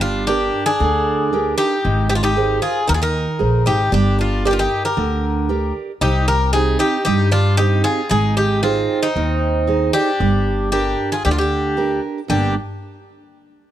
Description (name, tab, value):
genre	greek folk, Greek bouzouki band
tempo	115 BPM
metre	4/4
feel	straight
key	G phrygian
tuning	A4 = 441 Hz
part	Greek bouzouki	melody	0.0-12.5 s	Eb4 to Bb4	-20 LUFS	left 2 dB	none
part	Greek bouzouki	second line	0.0-12.5 s	C4 to G4	-25 LUFS	equal	none
part	picked steel-string acoustic guitar	accompaniment	0.0-12.5 s	G2 to D5	-22 LUFS	right 6 dB	none
part	upright bass	bass	0.0-12.5 s	G1 to G2	-20 LUFS	left 1 dB	none
room	studio reverb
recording	dry, close 1970s-style studio recording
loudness	-15 LUFS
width	side -11 dB against mid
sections	0.0-12.3 A section; 12.3-13.7 B section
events	none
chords	0.0 Gm; 1.8 Abadd9; 3.9 Gm; 6.0 Cm; 8.1 Ab; 10.2 Gm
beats	0.27 0.79 1.31 | 1.84 2.36 2.88 3.40 | 3.92 4.44 4.97 5.49 | 6.01 6.53 7.05 7.58 | 8.10 8.62 9.15 9.67 | 10.20 10.72 11.24 11.77 | 12.29